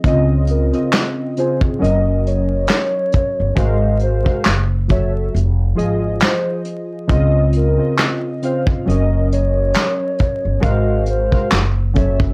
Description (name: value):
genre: lo-fi hip hop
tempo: 68 BPM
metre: 4/4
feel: swing 57% on 16ths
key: Db major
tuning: A4 = 440 Hz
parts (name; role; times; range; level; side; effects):
- warbly lo-fi synth keys; accompaniment; 0.0-12.3 s; Db3 to F5; -24 LUFS; equal; chorus, low-pass filter, plate reverb
- upright bass; bass; 0.0-12.3 s; F1 to Db2; -19 LUFS; equal; none
- vintage brush drum kit; drums; 0.0-12.3 s; handclaps, hi-hat, kick drum, snare drum; -19 LUFS; equal; vintage 12-bit sampler grit
- hollow clarinet-like synth lead; melody; 0.1-12.2 s; Bb4 to Eb5; -24 LUFS; equal; chorus, low-pass filter, plate reverb
room: light reverb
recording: dry, gritty hardware recording, vinyl crackle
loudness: -17 LUFS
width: mono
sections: 0.0-12.3 A section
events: none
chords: 0.0 Dbmaj9; 1.8 Gb6; 3.6 Ab13; 4.5 Gbm7; 5.3 Fm7; 7.1 Dbmaj9; 8.9 Gb6; 10.6 Ab13; 11.5 Gbm7